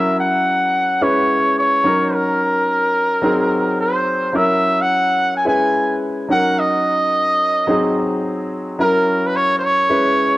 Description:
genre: R&B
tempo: 108 BPM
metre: 4/4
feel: swing 64% on 16ths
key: unclear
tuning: A4 = 439 Hz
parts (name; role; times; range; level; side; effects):
- trumpet with bucket mute; melody; 0.0-10.4 s; A#4 to G#5; -16 LUFS; equal; cassette tape
- warm concert grand piano; accompaniment; 0.0-10.4 s; F#3 to B4; -19 LUFS; left 1 dB; none
room: moderate small room ambience, RT60 0.5 s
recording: home recording on cassette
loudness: -15 LUFS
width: side -18 dB against mid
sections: 0.0-10.4 A section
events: none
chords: 0.0 F#7; 1.0 C#m7; 1.8 D#m7; 3.2 G#7; 4.3 F#7; 5.5 C#m7; 6.3 D#m7; 7.7 G#7; 8.8 F#7

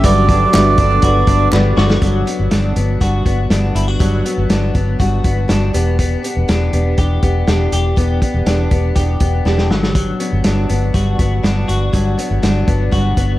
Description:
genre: jangly indie pop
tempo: 121 BPM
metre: 4/4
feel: straight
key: G major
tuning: A4 = 440 Hz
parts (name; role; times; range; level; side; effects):
- melodica; melody; 0.0-1.5 s; D5; -17 LUFS; right 4 dB; tape echo
- clear upright piano; accompaniment; 0.0-2.0 s; G3 to E5; -23 LUFS; right 2 dB; none
- picked steel-string acoustic guitar; accompaniment; 0.0-13.4 s; E3 to G4; -22 LUFS; right 3 dB; tape echo
- hollow soft pad; sustained chords; 0.0-2.0 s; B3 to B4; -23 LUFS; equal; chorus
- direct-recorded clean electric guitar; arpeggios; 0.0-13.4 s; F#3 to G4; -21 LUFS; left 4 dB; lush chorus, tape echo
- vintage muted fingered electric bass; bass; 0.0-13.4 s; E1 to G1; -16 LUFS; equal; none
- vintage drum kit; drums; 0.0-13.3 s; hi-hat, kick drum, snare drum; -18 LUFS; equal; none
- group handclap; percussion; 0.5-1.6 s; none; -32 LUFS; right 1 dB; none
room: small room ambience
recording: echo-heavy mix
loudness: -12 LUFS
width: side -16 dB against mid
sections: 0.0-2.0 A section; 2.0-13.4 B section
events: drum fill 1.5-2.0, 9.5-10.0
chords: 0.0 Gmaj7; 5.7 Em7; 9.7 Gmaj7

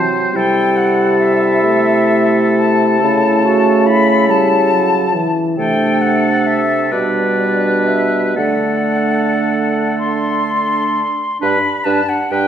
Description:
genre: classical, slow romantic movement for wind quintet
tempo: 35-48 BPM (dotted quarters)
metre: 6/8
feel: rubato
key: G major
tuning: A4 = 439 Hz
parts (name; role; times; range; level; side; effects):
- silver concert flute; melody; 0.0-12.5 s; D5 to C6; -18 LUFS; left 3 dB; none
- clear oboe; second line; 0.0-12.5 s; A4 to C5; -20 LUFS; left 1 dB; none
- dark French horn; accompaniment; 0.0-11.0 s; E3 to A3; -18 LUFS; equal; none
- dark clarinet; accompaniment; 0.0-12.5 s; C4 to F#4; -20 LUFS; right 2 dB; none
- dark bassoon; bass; 0.0-12.5 s; G2 to D3; -18 LUFS; right 2 dB; none
room: wet recital hall reverb, RT60 1.4 s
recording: recorded in a church or concert hall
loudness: -12 LUFS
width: side -9 dB against mid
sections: 0.0-11.4 A section; 11.4-12.5 B section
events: none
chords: 0.3 Am7/C; 3.0 A7/C#; 5.6 D5/C; 6.9 G/B; 8.4 D; 11.4 G

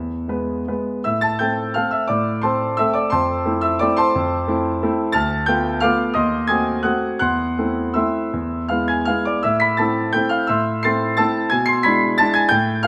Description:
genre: classical, piano waltz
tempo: 153-188 BPM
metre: 3/4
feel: rubato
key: A minor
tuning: A4 = 441 Hz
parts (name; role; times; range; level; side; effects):
- clear concert grand piano; solo; 0.0-12.9 s; D2 to C7; -19 LUFS; equal; none
room: moderate recital hall reverb, RT60 1.8 s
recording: close, detailed microphones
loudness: -19 LUFS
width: mono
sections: 0.0-1.1 A section; 1.1-12.9 B section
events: none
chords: 0.0 E; 1.1 Am; 3.1 Fmaj7; 5.1 Bm7b5/D; 6.2 D#dim7; 7.2 Am/E; 8.3 E; 9.4 Am; 11.5 E7/B

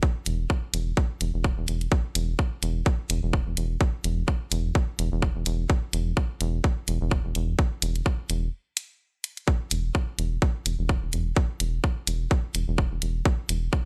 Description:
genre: minimal techno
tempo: 127 BPM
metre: 4/4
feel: swing 56% on 16ths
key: unclear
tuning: A4 = 440 Hz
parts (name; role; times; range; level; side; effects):
- electronic kick drum; drums; 0.0-13.8 s; none; -26 LUFS; equal; studio reverb
- rubbery square bass; bass; 0.3-13.7 s; E1; -29 LUFS; equal; sidechain pumping
- electronic hi-hat; drums; 0.3-13.6 s; none; -29 LUFS; equal; studio reverb
room: little or no reverb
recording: bright 1980s-style digital production, lossy compression artefacts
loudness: -27 LUFS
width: mono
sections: 0.0-13.9 A section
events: break 8.5-9.5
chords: none

